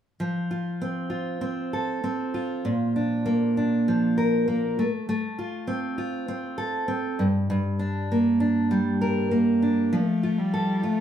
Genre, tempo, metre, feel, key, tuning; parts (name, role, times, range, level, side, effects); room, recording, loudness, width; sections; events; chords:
pop; 99 BPM; 4/4; straight; F major; A4 = 440 Hz
fingerpicked steel-string acoustic guitar; accompaniment; 0.2-11.0 s; G2 to Bb4; -23 LUFS; right 1 dB
dark cello; melody; 9.9-11.0 s; G3 to A3; -25 LUFS; left 2 dB; plate reverb
wet studio reverb, RT60 0.7 s; heard from further back in the room; -23 LUFS; side -9 dB against mid
0.2-9.9 A section; 9.9-11.0 B section
0.2 F; 2.6 Bb; 4.8 F/A; 7.2 Gm; 9.9 F